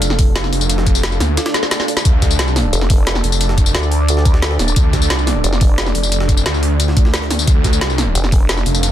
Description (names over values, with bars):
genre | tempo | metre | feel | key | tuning
dark technical drum and bass | 177 BPM | 4/4 | straight | D minor | A4 = 440 Hz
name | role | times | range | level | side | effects
deep dark ambient pad | sustained chords | 0.0-8.9 s | D4 to F5 | -22 LUFS | right 1 dB | chorus, built-in reverb, sidechain pumping
wide detuned saw bass | bass | 0.0-8.9 s | F1 to D2 | -17 LUFS | equal | chorus
drum and bass drum kit | drums | 0.0-8.9 s | hi-hat, snare drum, tambourine | -19 LUFS | left 1 dB | none
jungle sampler-style drum kit | drums | 0.0-8.9 s | hi-hat, snare drum | -28 LUFS | right 1 dB | high-pass filter on snare, high-pass filter on hats
electronic kick drum | drums | 0.2-8.4 s | none | -13 LUFS | equal | overdrive
swell | sound effects | 1.5-2.1 s | none | -27 LUFS | right 1 dB | none
vowel-sweep wobble bass | bass | 2.7-5.9, 8.2-8.6 s | Eb1 to D2 | -17 LUFS | equal | chorus, tube saturation
room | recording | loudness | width
little or no reverb | dense, heavily limited modern master | -12 LUFS | side -12 dB against mid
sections
0.0-8.9 A section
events
swell 1.5-2.1; drum fill 1.5-2.1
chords
0.0 D5